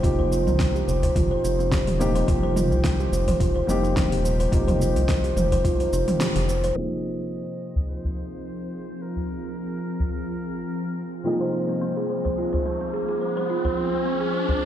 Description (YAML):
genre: organic downtempo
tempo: 107 BPM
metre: 4/4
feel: swing 54% on 16ths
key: F minor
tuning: A4 = 440 Hz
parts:
  - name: felt-muted upright piano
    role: accompaniment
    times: 0.0-14.7 s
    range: C3 to Ab4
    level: -30 LUFS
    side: left 1 dB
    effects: sidechain pumping, ping-pong delay, shimmer reverb
  - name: kalimba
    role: arpeggios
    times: 0.0-6.8, 11.3-14.6 s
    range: C4 to C5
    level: -26 LUFS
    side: right 1 dB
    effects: ping-pong delay, shimmer reverb
  - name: round analog bass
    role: bass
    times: 0.0-6.7 s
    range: Eb1 to C2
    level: -24 LUFS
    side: equal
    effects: sidechain pumping
  - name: deep house drum kit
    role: drums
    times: 0.0-6.7 s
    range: cabasa, hi-hat, snare drum, toms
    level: -28 LUFS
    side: equal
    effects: overdrive
  - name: electronic kick drum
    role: drums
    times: 0.0-5.8 s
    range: none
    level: -24 LUFS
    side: equal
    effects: overdrive
  - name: udu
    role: percussion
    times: 0.2-14.6 s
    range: none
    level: -28 LUFS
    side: equal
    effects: none
  - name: trumpet with metal mute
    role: melody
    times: 6.8-10.9 s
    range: Bb4 to Eb5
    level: -44 LUFS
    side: left 1 dB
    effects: ping-pong delay, shimmer reverb
  - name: warbly tape-like pad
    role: sustained chords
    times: 7.7-14.6 s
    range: F3 to Ab4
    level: -31 LUFS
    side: equal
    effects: chorus, built-in reverb, sidechain pumping, shimmer reverb
  - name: riser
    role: sound effects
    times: 12.0-14.7 s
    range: none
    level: -31 LUFS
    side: equal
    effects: none
room: moderate lush hall reverb, RT60 2.5 s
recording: played on a big sound system in a bare room, stone room reverb, low-pass filter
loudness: -21 LUFS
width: side -11 dB against mid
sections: 0.0-6.8 A section; 6.8-14.7 B section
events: kick drops out 6.2-6.8; band accent 6.2; filter sweep on ambient pad 6.8-14.7; filter sweep 6.8-14.7; riser 12.0-14.7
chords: 0.0 Cm7; 6.8 Fm7